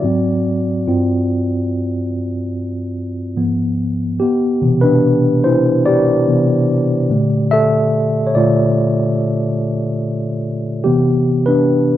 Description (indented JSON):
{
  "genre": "soul",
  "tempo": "72 BPM",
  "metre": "4/4",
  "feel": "straight",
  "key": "C major",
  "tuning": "A4 = 436 Hz",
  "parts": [
    { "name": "mellow tine electric piano", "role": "solo", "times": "0.0-12.0 s", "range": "G2 to E5", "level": "-14 LUFS", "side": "equal", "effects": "medium stereo tremolo" }
  ],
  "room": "moderate small room reverb, RT60 0.5 s",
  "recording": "rough home demo mix",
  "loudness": "-14 LUFS",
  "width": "side -13 dB against mid",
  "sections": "0.0-4.2 A section; 4.2-12.0 B section",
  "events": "tine electric piano solo 0.0-4.2, 4.2-12.0",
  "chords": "0.0 Ab7; 0.9 G7sus4; 3.4 Abm6; 4.2 Cmaj9; 7.1 Bbmaj7; 10.9 Cmaj9",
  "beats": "0.04 | 0.87 1.70 2.54 3.37 | 4.20 5.03 5.86 6.69 | 7.53 8.36 9.19 10.02 | 10.85 11.69"
}